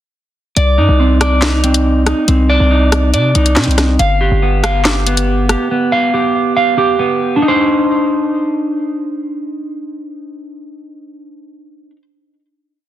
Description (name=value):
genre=hip hop, drill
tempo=140 BPM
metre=4/4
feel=half-time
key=C harmonic minor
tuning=A4 = 439 Hz
part: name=clean electric guitar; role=arpeggios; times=0.6-12.0 s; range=B3 to F5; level=-14 LUFS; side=right 1 dB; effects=lush chorus, tape echo
part: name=hard-hitting 808-style bass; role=bass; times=0.6-5.6 s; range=G1 to C3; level=-13 LUFS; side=equal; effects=none
part: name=drill drum kit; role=drums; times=0.6-5.6 s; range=handclaps, hi-hat, rim click, snare drum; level=-16 LUFS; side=left 1 dB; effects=none
room=light reverb, digital ambience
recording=dense, heavily limited modern master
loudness=-11 LUFS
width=side -12 dB against mid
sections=0.6-7.4 hook; 7.4-10.9 final chord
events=none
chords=0.6 Cmadd9; 4.0 G7; 7.4 Cmadd9